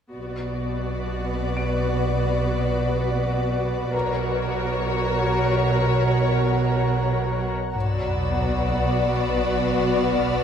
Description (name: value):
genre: cinematic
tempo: 63 BPM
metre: 4/4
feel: straight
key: B harmonic minor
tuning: A4 = 441 Hz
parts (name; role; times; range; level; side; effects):
- warm studio viola section; accompaniment; 0.1-10.4 s; B3 to A#4; -28 LUFS; left 1 dB; none
- ethereal airy pad; sustained chords; 0.9-10.4 s; B4 to A#5; -28 LUFS; left 3 dB; ensemble chorus, built-in reverb
- rich studio cello section; bass; 0.1-10.4 s; B2; -27 LUFS; right 2 dB; none
- warm studio double bass section; bass; 0.1-10.4 s; B1; -27 LUFS; right 3 dB; none
- warm studio violin section; melody; 0.2-10.4 s; C#5 to D5; -29 LUFS; left 4 dB; none
- dark concert grand piano; texture; 1.6-10.4 s; B4 to D7; -37 LUFS; left 3 dB; none
- warm studio violin section; second line; 7.7-10.4 s; F#4; -28 LUFS; left 1 dB; none
- sub drop; sound effects; 7.8-10.4 s; none; -30 LUFS; left 1 dB; none
- warm studio violin section; texture; 7.8-10.4 s; B5 to E#6; -36 LUFS; left 1 dB; none
room: moderate scoring stage reverb, RT60 1.7 s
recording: minimal, uncompressed stereo recording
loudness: -20 LUFS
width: side -8 dB against mid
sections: 0.1-7.8 A section; 7.8-10.4 B section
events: impact 7.8-10.4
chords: 0.1 Bm; 3.9 F#/B; 7.8 Bm